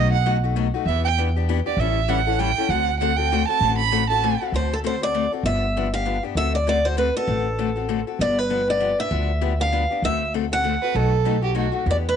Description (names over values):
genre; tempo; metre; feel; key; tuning
acoustic string swing (jazz manouche); 196 BPM; 3/4; swing 58% on 8ths; D mixolydian; A4 = 440 Hz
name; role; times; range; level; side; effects
warm violin; second line; 0.0-4.4, 10.8-11.8 s; F#4 to B5; -23 LUFS; right 12 dB; none
picked steel-string acoustic guitar; accompaniment; 0.0-12.1 s; B2 to A4; -26 LUFS; left 14 dB; none
upright bass; bass; 0.0-12.2 s; G1 to E2; -24 LUFS; equal; none
picked steel-string acoustic guitar; melody; 4.6-12.2 s; A4 to F#5; -23 LUFS; equal; none
room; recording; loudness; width
light reverb, studio ambience; 1960s-style stereo with parts hard left and right, nothing above 10.3 kHz; -19 LUFS; side -8 dB against mid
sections
0.0-4.5 A section; 4.5-12.2 B section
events
violin solo 0.0-4.5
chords
0.0 B7; 0.9 Em7; 1.8 A7; 2.7 D7; 5.4 G7; 6.4 D7; 8.2 G7; 10.0 D7; 10.9 B7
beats
0.26 0.56 | 0.87 1.17 1.48 | 1.78 2.09 2.39 | 2.70 3.00 3.31 | 3.61 3.92 4.22 | 4.53 4.84 5.14 | 5.45 5.75 6.06 | 6.36 6.67 6.97 | 7.28 7.58 7.89 | 8.20 8.50 8.81 | 9.11 9.42 9.72 | 10.03 10.33 10.64 | 10.94 11.25 11.55 | 11.86